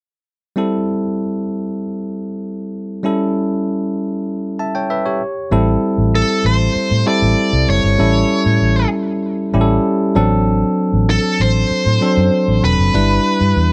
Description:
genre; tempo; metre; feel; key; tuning
1980s-style pop; 97 BPM; 4/4; straight; A dorian; A4 = 440 Hz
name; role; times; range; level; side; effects
bell-like tine electric piano; accompaniment; 0.6-13.7 s; F#3 to A5; -19 LUFS; equal; none
vintage muted fingered electric bass; bass; 5.5-13.7 s; E1 to A2; -18 LUFS; equal; none
smooth overdriven lead guitar; melody; 6.2-13.7 s; A4 to D5; -20 LUFS; equal; none
room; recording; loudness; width
light reverb; dry, close 1970s-style studio recording; -16 LUFS; mono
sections
0.6-5.5 A section; 5.5-13.7 B section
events
none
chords
0.6 Am7; 3.0 A7; 5.2 N.C.; 5.5 Am7; 8.0 A7; 10.2 D7/A; 12.9 G6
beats
| 0.57 1.19 1.81 2.43 | 3.05 3.66 4.28 4.90 | 5.52 6.14 6.76 7.38 | 7.99 8.61 9.23 9.85 | 10.47 11.09 11.71 12.32 | 12.94 13.56

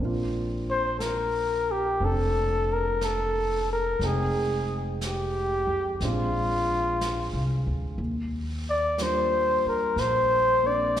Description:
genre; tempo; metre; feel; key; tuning
jazz ballad; 60 BPM; 4/4; swing 67% on 8ths; Bb major; A4 = 438 Hz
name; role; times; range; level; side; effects
warm concert grand piano; accompaniment; 0.0-11.0 s; G3 to G5; -34 LUFS; right 2 dB; slapback echo
upright bass; bass; 0.0-11.0 s; F1 to F2; -30 LUFS; equal; none
jazz brush drum kit; drums; 0.0-11.0 s; brushed snare drum, hi-hat, snare drum; -40 LUFS; right 1 dB; slapback echo
warm flugelhorn; melody; 0.7-11.0 s; F4 to D5; -24 LUFS; left 1 dB; slapback echo
room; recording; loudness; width
moderate club reverb, RT60 0.7 s; live gig heard through the venue's PA, recital hall reverb; -24 LUFS; side -10 dB against mid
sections
0.0-11.0 A section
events
none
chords
0.0 Bbadd9; 4.0 Fm9; 6.0 Bb9; 8.0 Ebmaj7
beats
1.00 2.01 3.01 | 4.02 5.02 6.01 7.00 | 7.99 8.98 9.98 10.97

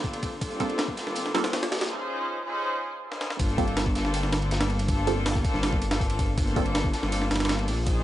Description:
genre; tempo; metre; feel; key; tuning
drum and bass, jungle; 161 BPM; 4/4; straight; G minor; A4 = 437 Hz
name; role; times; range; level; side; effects
warm studio string section; sustained chords; 0.0-8.0 s; Bb3 to B#4; -31 LUFS; left 1 dB; none
dark detuned saw bass; bass; 0.0-8.0 s; G1 to Bb1; -29 LUFS; equal; tube saturation, high-pass filter
breakbeat sampler-style drum kit; drums; 0.0-8.0 s; hi-hat, kick drum, ride cymbal, snare drum; -28 LUFS; equal; studio reverb
crunchy breakbeat drum kit; drums; 0.0-8.0 s; hi-hat, snare drum; -37 LUFS; left 1 dB; high-pass filter on hats, studio reverb, high-pass filter on snare, high-pass filter on room
filtered dub chord stab; stabs; 0.6-6.6 s; G3 to A4; -32 LUFS; right 3 dB; phaser, dub echo
room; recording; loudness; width
light reverb, small room ambience; dry, gritty hardware recording, high-pass filter, nothing above 10.6 kHz; -24 LUFS; side -13 dB against mid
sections
0.0-3.4 A section; 3.4-8.0 B section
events
build-up 0.0-3.4; break 1.9-3.4; drum fill 3.1; drop 3.4-8.0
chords
0.0 Gm11; 1.9 C#maj9; 3.4 Gm11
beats
0.04 | 0.41 0.79 1.16 1.53 | 1.91 2.28 2.65 3.02 | 3.40 3.77 4.14 4.51 | 4.89 5.26 5.63 6.00 | 6.38 6.75 7.12 7.50 | 7.87

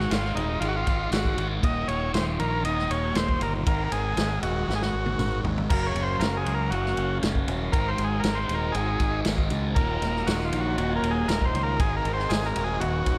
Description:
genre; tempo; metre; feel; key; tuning
psychedelic rock; 118 BPM; 4/4; straight; unclear; A4 = 440 Hz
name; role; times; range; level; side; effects
combo organ; melody; 0.0-13.2 s; Eb4 to Eb5; -31 LUFS; equal; slapback echo
thick fuzz guitar; riff; 0.0-13.2 s; Eb2 to Ab3; -33 LUFS; equal; distortion, phaser
growling fingered electric bass; bass; 0.0-13.2 s; Eb1 to Db2; -32 LUFS; equal; overdrive
vintage drum kit; drums; 0.0-13.2 s; crash cymbal, kick drum, ride cymbal, snare drum, toms; -31 LUFS; equal; none
tambourine; percussion; 0.1-12.4 s; none; -46 LUFS; equal; none
pedal harmonium; sustained chords; 5.7-13.2 s; Gb3 to F5; -39 LUFS; equal; none
room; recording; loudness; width
light reverb, studio reverb; none; -26 LUFS; mono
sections
0.0-13.2 A section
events
drum fill 4.7-5.7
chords
0.0 Ab5; 1.6 Eb5; 3.7 Ab5; 5.7 Gbmaj7; 7.7 Ab7; 9.8 Ebmadd9; 11.8 Ab7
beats
0.11 0.62 1.13 | 1.64 2.15 2.65 3.16 | 3.67 4.18 4.69 5.19 | 5.70 6.21 6.72 7.22 | 7.73 8.24 8.75 9.26 | 9.76 10.27 10.78 11.29 | 11.79 12.30 12.81

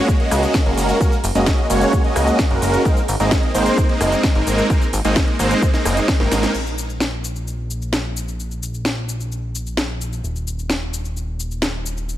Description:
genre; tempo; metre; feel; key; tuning
EDM, festival progressive house; 130 BPM; 4/4; straight; unclear; A4 = 441 Hz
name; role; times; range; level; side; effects
supersaw chords; riff; 0.0-6.5 s; Ab3 to Eb5; -18 LUFS; right 1 dB; cassette tape, sidechain pumping, digital delay
electronic kick drum; drums; 0.1-6.2 s; none; -18 LUFS; equal; none
house drum kit; drums; 0.1-12.2 s; crash cymbal, hi-hat, rim click, shaker, snare drum; -24 LUFS; equal; none
fat analog bass; bass; 0.3-12.2 s; Eb1 to Db2; -23 LUFS; equal; sidechain pumping
room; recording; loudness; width
light reverb, digital ambience; none; -16 LUFS; side -13 dB against mid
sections
0.0-6.5 A section; 6.5-12.2 B section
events
drop 0.0-6.5; drum fill 6.2-6.5; band accent 6.4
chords
0.0 Gbadd9; 2.9 Abadd9; 6.5 N.C.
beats
0.08 0.55 | 1.01 1.47 1.93 2.39 | 2.85 3.31 3.78 4.24 | 4.70 5.16 5.62 6.08 | 6.54 7.01 7.47 7.93 | 8.39 8.85 9.31 9.78 | 10.24 10.70 11.16 11.62 | 12.08

